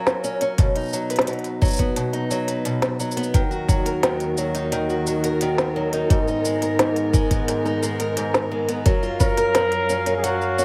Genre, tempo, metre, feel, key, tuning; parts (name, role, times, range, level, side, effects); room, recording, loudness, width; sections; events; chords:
folktronica; 87 BPM; 4/4; straight; Eb minor; A4 = 441 Hz
picked old ladder-braced acoustic guitar; arpeggios; 0.0-10.6 s; Ab2 to B4; -26 LUFS; equal; digital delay
organic electronic drum kit; drums; 0.1-10.6 s; hi-hat, shaker, snare drum; -27 LUFS; equal
electronic kick drum; drums; 0.6-9.3 s; -22 LUFS; equal
dark string quartet; sustained chords; 3.3-10.6 s; Eb2 to F5; -29 LUFS; equal
warm flugelhorn; melody; 9.2-10.6 s; Gb4 to Bb4; -24 LUFS; equal; digital delay
light reverb, small room ambience; -22 LUFS; mono
0.0-10.6 A section
0.0 Gbmaj7; 0.6 B; 3.3 Ebm; 6.1 Abmadd9; 8.9 Gbmaj7